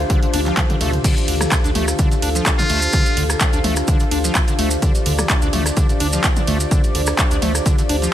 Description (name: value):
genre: acid house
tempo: 127 BPM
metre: 4/4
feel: swing 54% on 16ths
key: D minor pentatonic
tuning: A4 = 440 Hz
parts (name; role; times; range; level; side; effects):
- warm analog pad; sustained chords; 0.0-8.1 s; D3 to D5; -27 LUFS; equal; chorus, sidechain pumping
- round analog bass; bass; 0.0-8.1 s; D2; -22 LUFS; equal; sidechain pumping
- warbly tape-like pad; texture; 0.0-8.1 s; D4 to F5; -25 LUFS; left 1 dB; chorus, built-in reverb, sidechain pumping
- acid bass, square; riff; 0.1-8.1 s; D3 to D4; -24 LUFS; equal; overdrive, analog chorus, cassette tape, sidechain pumping, ping-pong delay
- electronic kick drum; drums; 0.1-7.8 s; none; -18 LUFS; equal; none
- punchy analog drum machine; drums; 0.1-8.1 s; crash cymbal, handclaps, hi-hat, ride cymbal, rim click, toms; -22 LUFS; equal; none
- maracas; percussion; 1.1-8.1 s; none; -27 LUFS; right 2 dB; none
- trumpet with metal mute; melody; 2.6-3.2 s; F4; -23 LUFS; equal; dub echo
room: light reverb, digital ambience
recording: none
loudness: -15 LUFS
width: side -12 dB against mid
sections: 0.0-8.1 A section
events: drum fill 0.3-1.0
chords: 0.0 Dm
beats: 0.10 0.57 | 1.04 1.52 1.99 2.46 | 2.93 3.41 3.88 4.35 | 4.82 5.30 5.77 6.24 | 6.71 7.18 7.66 8.13